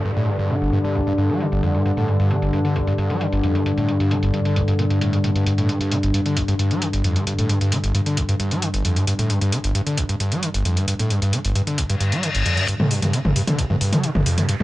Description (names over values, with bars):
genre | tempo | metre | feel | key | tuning
driving peak-time techno | 133 BPM | 4/4 | straight | unclear | A4 = 440 Hz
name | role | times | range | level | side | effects
screaming distorted acid line | riff | 0.0-14.6 s | G1 to G3 | -21 LUFS | equal | distortion, lush chorus, analog delay
analog drone | drone | 0.0-12.7 s | G2 to D3 | -22 LUFS | equal | chorus
downlifter, reverse cymbal and riser | sound effects | 0.0-1.9, 11.9-14.6 s | none | -29 LUFS | left 3 dB | none
techno drum kit | drums | 0.1-14.6 s | hi-hat, toms | -25 LUFS | equal | low-pass filter on snare, low-pass filter on hats, low-pass filter on cymbals, low-pass filter on toms, low-pass filter on room
room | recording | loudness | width
little or no reverb | dry, gritty hardware recording, cassette tape | -18 LUFS | side -17 dB against mid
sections
0.0-12.7 A section; 12.7-14.6 B section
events
filter sweep on drum 0.0-12.7; reverse cymbal 11.9-12.7; build-up 12.7-14.6; riser 12.7-14.6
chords
0.0 G5